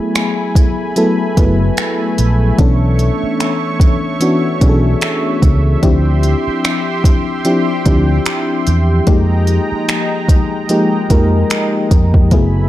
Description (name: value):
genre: contemporary R&B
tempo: 74 BPM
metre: 4/4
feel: swing 58% on 16ths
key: unclear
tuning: A4 = 440 Hz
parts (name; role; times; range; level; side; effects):
- FM electric piano with tremolo; accompaniment; 0.0-12.7 s; E3 to B4; -16 LUFS; left 2 dB; none
- warm analog pad; sustained chords; 0.0-12.7 s; Ab3 to C#6; -22 LUFS; right 3 dB; chorus, tremolo, sidechain pumping
- smooth R&B drum kit; drums; 0.2-12.5 s; finger snaps, hi-hat, kick drum; -14 LUFS; equal; none
- fingered electric bass; bass; 1.4-12.7 s; F#1 to F2; -13 LUFS; equal; none
room: digital ambience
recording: dark, warm production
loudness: -11 LUFS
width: side -14 dB against mid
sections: 0.0-12.7 A section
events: none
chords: 0.0 F#m11; 2.6 Bm11; 5.8 Dm11; 9.1 Fm11